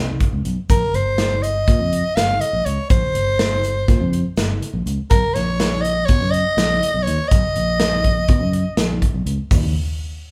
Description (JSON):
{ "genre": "progressive instrumental, band music in an uneven meter", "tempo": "245 BPM (eighths)", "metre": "9/8", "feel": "straight", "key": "unclear", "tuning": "A4 = 440 Hz", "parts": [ { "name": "growling soprano saxophone", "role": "melody", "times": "0.0-9.0 s", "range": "Bb4 to F5", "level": "-23 LUFS", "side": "equal", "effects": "none" }, { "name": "fingered electric bass", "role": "bass", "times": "0.0-9.7 s", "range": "G1 to B2", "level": "-24 LUFS", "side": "equal", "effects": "none" }, { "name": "modern studio drum kit", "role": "drums", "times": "0.2-9.6 s", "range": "hi-hat, kick drum, snare drum, toms", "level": "-22 LUFS", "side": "equal", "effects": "none" }, { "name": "tube shaker", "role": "percussion", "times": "0.7-9.7 s", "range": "none", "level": "-43 LUFS", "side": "equal", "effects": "none" } ], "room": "light reverb", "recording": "band playing live in one room", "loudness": "-19 LUFS", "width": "mono", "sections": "0.0-9.5 A section", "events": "none", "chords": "0.0 Dbsus2; 0.7 Bbsus2; 5.1 Bmaj7; 9.5 N.C.", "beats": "0.20 0.45 | 0.69 0.94 1.19 1.43 1.68 1.92 2.17 2.41 2.66 | 2.90 3.15 3.39 3.64 3.88 4.13 4.37 4.62 4.86 | 5.11 5.35 5.60 5.84 6.09 6.33 6.58 6.82 7.07 | 7.31 7.55 7.80 8.04 8.29 8.53 8.78 9.02 9.27 | 9.51" }